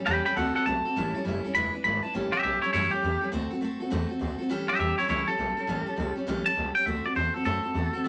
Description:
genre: rockabilly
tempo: 203 BPM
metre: 4/4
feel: swing 64% on 8ths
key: A mixolydian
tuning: A4 = 440 Hz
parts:
  - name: picked steel-string acoustic guitar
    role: accompaniment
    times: 0.0-8.1 s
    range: A2 to B4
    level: -33 LUFS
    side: equal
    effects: none
  - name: twangy electric guitar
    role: melody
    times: 0.1-8.1 s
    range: E4 to B5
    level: -29 LUFS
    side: equal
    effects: none
  - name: upright bass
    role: bass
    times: 0.1-8.1 s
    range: E1 to F#2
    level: -35 LUFS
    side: equal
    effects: none
room: moderate studio reverb, RT60 0.6 s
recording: none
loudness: -28 LUFS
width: mono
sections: 0.0-2.1 A section; 2.1-8.1 B section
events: clean electric guitar solo 0.0-2.1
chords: 0.4 D7; 1.0 A7; 1.6 E7; 2.1 A7; 3.3 D7; 4.5 A7; 6.9 D7

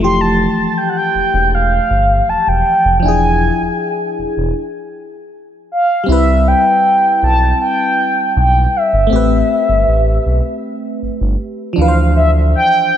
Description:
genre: contemporary R&B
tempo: 79 BPM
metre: 4/4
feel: straight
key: unclear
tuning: A4 = 439 Hz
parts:
  - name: mellow horn-like synth lead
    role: melody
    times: 0.0-13.0 s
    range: E5 to C6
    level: -14 LUFS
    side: equal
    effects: chorus, ping-pong delay
  - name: FM electric piano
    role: accompaniment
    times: 0.0-13.0 s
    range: E3 to C5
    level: -19 LUFS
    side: left 2 dB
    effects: chorus, phaser
  - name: smooth synth bass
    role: bass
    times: 0.0-12.5 s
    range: E1 to D2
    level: -15 LUFS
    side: equal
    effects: none
room: wet lush hall reverb, RT60 2.9 s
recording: dreamy mix soaked in reverb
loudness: -11 LUFS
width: side -10 dB against mid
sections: 0.0-6.1 A section; 6.1-13.0 B section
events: stop 4.6-6.1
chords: 0.0 Fmaj9; 3.0 E7b9; 6.1 Cmaj7; 9.1 Am9; 11.8 Dm9

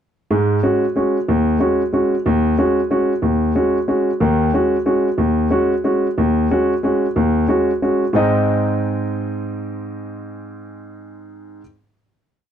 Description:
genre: jazz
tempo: 183 BPM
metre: 3/4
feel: swing 62% on 8ths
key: Ab mixolydian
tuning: A4 = 439 Hz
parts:
  - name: warm grand piano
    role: solo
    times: 0.3-11.6 s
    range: Eb2 to Eb5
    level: -16 LUFS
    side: equal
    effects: none
room: moderate studio reverb, RT60 0.5 s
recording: dark, warm production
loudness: -15 LUFS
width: side -9 dB against mid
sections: 0.3-8.1 A section; 8.1-10.1 final chord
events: none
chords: 0.3 Ab7sus4; 8.1 Ab

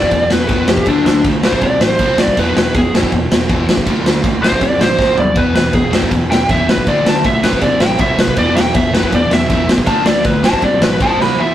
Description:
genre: punk rock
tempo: 160 BPM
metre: 4/4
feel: straight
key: unclear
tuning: A4 = 441 Hz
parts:
  - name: lead guitar through a small cranked amp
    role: melody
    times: 0.0-11.5 s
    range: D4 to B5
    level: -16 LUFS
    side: equal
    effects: overdrive
  - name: biting overdriven guitar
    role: riff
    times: 0.0-11.5 s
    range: E2 to D4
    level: -18 LUFS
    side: equal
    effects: none
  - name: growling picked electric bass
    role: bass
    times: 0.0-11.3 s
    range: E1 to C3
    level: -22 LUFS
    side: equal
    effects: overdrive
  - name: raw garage drum kit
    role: drums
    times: 0.0-11.3 s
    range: crash cymbal, kick drum, snare drum, toms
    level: -14 LUFS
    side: equal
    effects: none
room: light reverb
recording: rough rehearsal-room recording, tube saturation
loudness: -11 LUFS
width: side -12 dB against mid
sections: 0.0-11.4 A section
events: lead electric guitar solo 0.0-11.4; drum fill 5.0-5.4, 11.2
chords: 0.0 E5; 0.9 D5; 1.4 C5; 2.4 E5; 3.9 D5; 4.4 C5; 5.4 E5; 6.9 D5; 7.4 C5; 8.4 E5; 9.9 D5; 10.4 C5

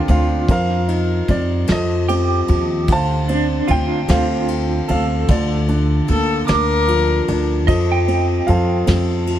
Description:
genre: acoustic folk-pop ballad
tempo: 50 BPM (dotted quarters)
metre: 6/8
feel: straight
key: unclear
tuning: A4 = 444 Hz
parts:
  - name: dark grand piano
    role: melody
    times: 0.0-9.4 s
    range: D3 to A5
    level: -20 LUFS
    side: right 1 dB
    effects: none
  - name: electric guitar through a small old amp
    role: arpeggios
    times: 0.0-9.4 s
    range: D4 to D6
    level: -24 LUFS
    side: right 3 dB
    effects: tremolo
  - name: upright bass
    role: bass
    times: 0.1-9.4 s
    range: D2 to F2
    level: -19 LUFS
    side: equal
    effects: none
  - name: soft brush drum kit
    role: drums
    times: 0.1-9.4 s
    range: kick drum, ride cymbal, snare drum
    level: -25 LUFS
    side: equal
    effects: none
  - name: warm viola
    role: second line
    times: 6.1-7.4 s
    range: A4 to Bb4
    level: -20 LUFS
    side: left 6 dB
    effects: none
room: light reverb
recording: close, detailed microphones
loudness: -15 LUFS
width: side -11 dB against mid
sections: 0.0-9.4 A section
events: none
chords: 0.5 F7sus4; 1.7 F7; 2.9 Dm7; 5.3 Bbmaj7/D; 7.7 F7

